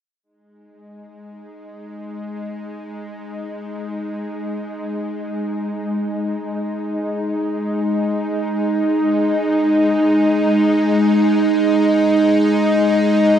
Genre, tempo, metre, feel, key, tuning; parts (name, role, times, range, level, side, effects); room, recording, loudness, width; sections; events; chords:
ambient; free time; A4 = 440 Hz
bowed-like drone; drone; 1.0-13.4 s; G#3 to D#4; -17 LUFS; equal; built-in reverb
wet cathedral reverb, RT60 5.3 s; dark, warm production; -16 LUFS; side -9 dB against mid
0.2-13.4 A section
fade-in on synth drone 0.2-13.4
0.2 G#5